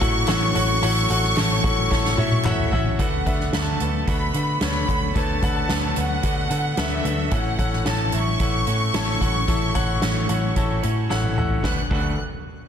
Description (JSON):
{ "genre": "piano-driven pop", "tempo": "111 BPM", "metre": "4/4", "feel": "straight", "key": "D major", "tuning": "A4 = 440 Hz", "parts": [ { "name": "warm studio violin section", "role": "melody", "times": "0.0-12.2 s", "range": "E5 to F#6", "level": "-26 LUFS", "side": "equal", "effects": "none" }, { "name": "mellow French horn section", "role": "second line", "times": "0.0-2.7 s", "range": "F#3 to F#4", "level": "-33 LUFS", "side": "left 1 dB", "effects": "none" }, { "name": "clear baby grand piano", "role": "accompaniment", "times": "0.0-12.2 s", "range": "D2 to A5", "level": "-27 LUFS", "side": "left 4 dB", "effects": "none" }, { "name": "twelve-string electric guitar", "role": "riff", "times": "0.0-12.1 s", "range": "A2 to F#4", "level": "-32 LUFS", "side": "right 11 dB", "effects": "spring reverb" }, { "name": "vintage muted picked electric bass", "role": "bass", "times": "0.0-12.2 s", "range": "A1 to D3", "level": "-25 LUFS", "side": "equal", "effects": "none" }, { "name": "soft-mallet drum kit", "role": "drums", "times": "0.0-12.0 s", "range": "crash cymbal, hi-hat, kick drum, snare drum, toms", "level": "-25 LUFS", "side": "equal", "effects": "none" }, { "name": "group handclap", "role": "percussion", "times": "0.3-2.6 s", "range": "none", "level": "-38 LUFS", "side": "left 3 dB", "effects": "none" } ], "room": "light reverb, small room reverb", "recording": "dense, heavily limited modern master", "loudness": "-19 LUFS", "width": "side -8 dB against mid", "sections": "0.0-3.0 A section; 3.0-11.6 B section; 11.6-12.7 C section", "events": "drum fill 1.9-3.0, 11.1-11.6", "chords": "0.0 A6; 3.0 D6; 7.3 A6; 11.6 D6", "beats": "0.29 | 0.83 1.37 1.91 2.45 | 2.99 3.53 4.07 4.62 | 5.16 5.70 6.24 6.78 | 7.32 7.86 8.40 8.94 | 9.48 10.02 10.56 11.10 | 11.64" }